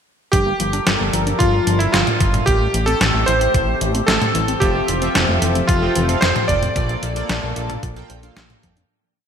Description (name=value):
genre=synthwave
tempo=112 BPM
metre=4/4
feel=straight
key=G dorian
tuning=A4 = 440 Hz
part: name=bright electric grand piano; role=melody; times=0.3-8.6 s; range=E4 to D5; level=-21 LUFS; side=right 1 dB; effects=digital delay
part: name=soft synth bell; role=second line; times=0.3-8.6 s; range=E4 to D5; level=-27 LUFS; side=right 1 dB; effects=none
part: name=phased analog pad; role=sustained chords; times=0.6-8.9 s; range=F3 to E5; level=-26 LUFS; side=equal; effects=phaser, chorus
part: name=wide unison pluck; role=arpeggios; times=0.3-8.8 s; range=E3 to D4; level=-28 LUFS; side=left 4 dB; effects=digital delay
part: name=chorused synth bass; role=bass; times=0.3-8.8 s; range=F1 to F2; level=-22 LUFS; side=equal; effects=none
part: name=detuned 8-bit digital drum machine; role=drums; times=0.3-8.9 s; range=hi-hat, snare drum, toms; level=-21 LUFS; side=equal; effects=gated reverb
part: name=electronic kick drum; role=drums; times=0.3-8.7 s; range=none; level=-20 LUFS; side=equal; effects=none
part: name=chorused polysynth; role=stabs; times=4.6-8.7 s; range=Bb2 to G5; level=-28 LUFS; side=right 4 dB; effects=vintage 12-bit sampler grit, digital delay
room=moderate lush hall reverb, RT60 2.4 s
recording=bright 1980s-style digital production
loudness=-15 LUFS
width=side -7 dB against mid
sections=0.3-8.9 verse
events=fade-out 6.0-8.9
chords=0.3 Gm7; 2.5 Am7; 4.6 Fmaj7; 6.8 Bbmaj7